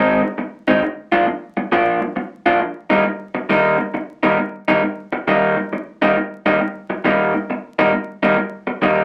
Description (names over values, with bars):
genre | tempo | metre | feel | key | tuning
blues | 135 BPM | 4/4 | swing 66% on 8ths | Eb major | A4 = 440 Hz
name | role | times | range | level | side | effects
electric guitar through a small old amp | solo | 0.0-9.0 s | Eb3 to F4 | -18 LUFS | equal | none
room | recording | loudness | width
wet club reverb, RT60 0.5 s | vinyl crackle | -19 LUFS | mono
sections
0.0-2.6 A section; 2.6-9.0 B section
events
none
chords
0.0 Ab; 0.8 Bb; 2.6 Eb